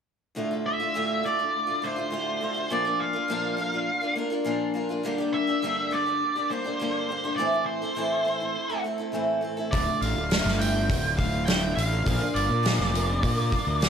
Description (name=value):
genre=quiet-loud alternative rock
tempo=103 BPM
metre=4/4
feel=straight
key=D minor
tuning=A4 = 440 Hz
part: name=picked steel-string acoustic guitar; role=arpeggios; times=0.3-13.9 s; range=D2 to Bb4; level=-28 LUFS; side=equal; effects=slapback echo, analog delay
part: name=octave-fuzz lead guitar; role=melody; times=0.7-13.9 s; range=C5 to G5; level=-28 LUFS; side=right 1 dB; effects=distortion
part: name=fuzz fingered electric bass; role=bass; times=9.7-13.9 s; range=D1 to Bb2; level=-27 LUFS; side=equal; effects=overdrive
part: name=loose indie drum kit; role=drums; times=9.7-13.9 s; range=hi-hat, kick drum, snare drum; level=-27 LUFS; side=equal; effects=none
room=moderate lush hall reverb, RT60 1.5 s, small room ambience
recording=big arena sound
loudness=-24 LUFS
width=side -7 dB against mid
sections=0.4-13.9 A section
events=none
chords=0.4 Dm; 2.7 Bb; 5.1 Gm; 7.4 Am; 9.7 Dm; 12.1 Bb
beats=| 0.36 0.95 1.54 2.13 | 2.71 3.30 3.88 4.47 | 5.06 5.64 6.22 6.81 | 7.39 7.97 8.56 9.14 | 9.72 10.31 10.89 11.47 | 12.06 12.64 13.22 13.81